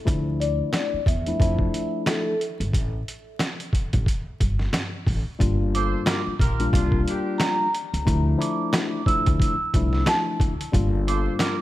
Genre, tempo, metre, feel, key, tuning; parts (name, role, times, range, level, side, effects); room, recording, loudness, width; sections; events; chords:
hip hop, boom-bap hip-hop; 90 BPM; 4/4; swing 57% on 16ths; A4 = 437 Hz
mellow tine electric piano; accompaniment; 0.1-11.6 s; F3 to F4; -27 LUFS; left 4 dB; high-pass filter, low-pass filter
upright bass; bass; 0.1-11.3 s; G1 to F2; -25 LUFS; equal
trip hop sampler-style drum kit; drums; 0.1-11.6 s; hi-hat, kick drum, snare drum; -24 LUFS; equal
vibraphone with soft mallets; melody; 0.4-11.6 s; A4 to F6; -28 LUFS; right 1 dB; high-pass filter, low-pass filter, ping-pong delay
mellow horn section; stabs; 5.7-11.6 s; Bb3 to C5; -33 LUFS; right 2 dB; high-pass filter, low-pass filter, ping-pong delay
small room reverb; vinyl crackle; -21 LUFS; side -15 dB against mid
0.0-5.4 A section; 5.4-11.6 B section
0.1 Dmadd9; 2.7 Gsus2; 5.4 Gm7; 8.1 Dmadd9; 10.7 Gm7